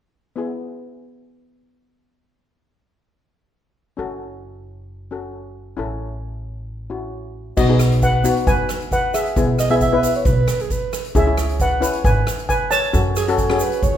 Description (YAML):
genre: calypso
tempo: 134 BPM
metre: 4/4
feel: straight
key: E major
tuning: A4 = 441 Hz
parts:
  - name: steel pan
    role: accompaniment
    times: 0.4-14.0 s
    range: B3 to B4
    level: -22 LUFS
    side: left 4 dB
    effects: none
  - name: upright bass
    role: bass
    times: 4.0-14.0 s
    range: F#1 to F#2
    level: -22 LUFS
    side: right 1 dB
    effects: none
  - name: steel pan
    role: melody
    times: 7.6-13.1 s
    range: F#4 to A5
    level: -21 LUFS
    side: equal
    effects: none
  - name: street-band drum kit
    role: drums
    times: 7.6-13.9 s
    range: crash cymbal, hi-hat, kick drum, rim click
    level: -22 LUFS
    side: equal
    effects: none
  - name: egg shaker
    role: percussion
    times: 7.6-13.9 s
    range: none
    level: -34 LUFS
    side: right 8 dB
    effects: none
  - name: breathy alto saxophone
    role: second line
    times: 9.6-14.0 s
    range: G#4 to E5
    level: -22 LUFS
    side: right 4 dB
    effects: none
room: light reverb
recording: minimal, uncompressed stereo recording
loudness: -16 LUFS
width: side -10 dB against mid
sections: 0.4-7.6 A section; 7.6-14.0 B section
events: none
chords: 0.4 E; 4.0 F#m; 5.8 A; 7.6 B; 9.4 E/B; 11.2 C#m7; 12.9 F#m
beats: | 0.38 0.83 1.28 1.73 | 2.18 2.63 3.08 3.54 | 3.98 4.43 4.88 5.33 | 5.78 6.23 6.68 7.13 | 7.58 8.03 8.47 8.92 | 9.37 9.81 10.26 10.71 | 11.15 11.60 12.04 12.49 | 12.94 13.38 13.83